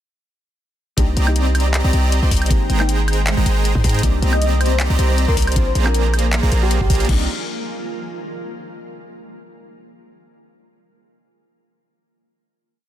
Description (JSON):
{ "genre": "future bass", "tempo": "157 BPM", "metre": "4/4", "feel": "swing 54% on 16ths, half-time", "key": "C minor", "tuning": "A4 = 439 Hz", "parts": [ { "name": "soft round pluck", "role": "accompaniment", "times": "1.0-7.3 s", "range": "Bb3 to G5", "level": "-29 LUFS", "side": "left 2 dB", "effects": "wide subtle chorus, sidechain pumping, ping-pong delay" }, { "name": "shimmering ambient pad", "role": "sustained chords", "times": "2.0-7.3 s", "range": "Eb3 to G5", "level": "-31 LUFS", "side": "equal", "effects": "chorus, built-in reverb, sidechain pumping" }, { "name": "big bright polysynth", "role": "riff", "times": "1.0-7.2 s", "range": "Ab3 to C6", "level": "-23 LUFS", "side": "right 3 dB", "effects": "sidechain pumping, ping-pong delay" }, { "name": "warm 808-style bass", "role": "bass", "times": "1.0-7.3 s", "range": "Ab1 to Ab2", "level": "-17 LUFS", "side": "equal", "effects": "sidechain pumping" }, { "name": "electronic kick drum", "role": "drums", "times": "1.0-7.2 s", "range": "none", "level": "-18 LUFS", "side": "equal", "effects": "none" }, { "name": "trap drum kit", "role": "drums", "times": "1.0-7.2 s", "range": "crash cymbal, handclaps, hi-hat, woodblock", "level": "-24 LUFS", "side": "left 1 dB", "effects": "none" }, { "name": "airy dreamy lead", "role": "melody", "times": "4.3-7.1 s", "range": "G4 to Eb5", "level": "-25 LUFS", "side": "left 1 dB", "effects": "chorus, sidechain pumping, tape echo" } ], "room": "digital ambience", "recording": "dense, heavily limited modern master", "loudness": "-15 LUFS", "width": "side -12 dB against mid", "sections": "1.0-7.1 drop; 7.1-8.6 final chord", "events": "drop 1.0-7.1", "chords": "1.0 Cm9; 2.5 Abmaj9; 4.0 Cm9; 5.6 Bb7; 7.1 Cm9", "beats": "| 0.98 1.36 1.74 2.12 | 2.50 2.89 3.27 3.65 | 4.03 4.42 4.80 5.18 | 5.56 5.94 6.33 6.71 | 7.09" }